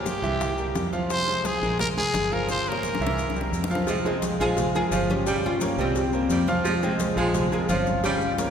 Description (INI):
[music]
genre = latin, salsa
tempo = 173 BPM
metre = 4/4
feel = straight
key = F harmonic minor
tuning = A4 = 440 Hz
[part]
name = growling trumpet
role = melody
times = 0.0-3.7 s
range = G4 to C5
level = -29 LUFS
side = left 1 dB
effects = none
[part]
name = bright baby grand piano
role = accompaniment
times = 0.0-8.5 s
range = E3 to G5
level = -29 LUFS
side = right 1 dB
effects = none
[part]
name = fingered electric bass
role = bass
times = 0.0-8.5 s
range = G1 to F2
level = -29 LUFS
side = equal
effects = none
[part]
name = bongos and cowbell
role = percussion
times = 0.1-8.5 s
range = none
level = -34 LUFS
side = left 2 dB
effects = none
[part]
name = congas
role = percussion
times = 0.1-8.5 s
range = none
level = -33 LUFS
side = right 1 dB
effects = none
[part]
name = maracas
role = percussion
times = 0.1-8.5 s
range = none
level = -40 LUFS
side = left 6 dB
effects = none
[part]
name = oud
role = melody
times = 3.9-8.5 s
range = G3 to Ab4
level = -26 LUFS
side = left 2 dB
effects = none
[part]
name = breathy baritone saxophone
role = second line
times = 3.9-8.3 s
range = F3 to Ab3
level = -30 LUFS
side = right 3 dB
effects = none
[sound]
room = wet cathedral reverb, RT60 5.7 s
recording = recorded in a church or concert hall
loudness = -22 LUFS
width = side -8 dB against mid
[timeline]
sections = 0.0-3.9 A section; 3.9-8.5 B section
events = drum fill 2.5-3.9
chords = 0.4 C7; 1.1 Fm; 1.8 Bb5; 2.5 Gm7b5; 3.2 C7; 3.9 Fm; 4.6 Bbm7; 5.3 Gm7b5; 6.0 C5; 6.7 Fm; 7.3 Bbm7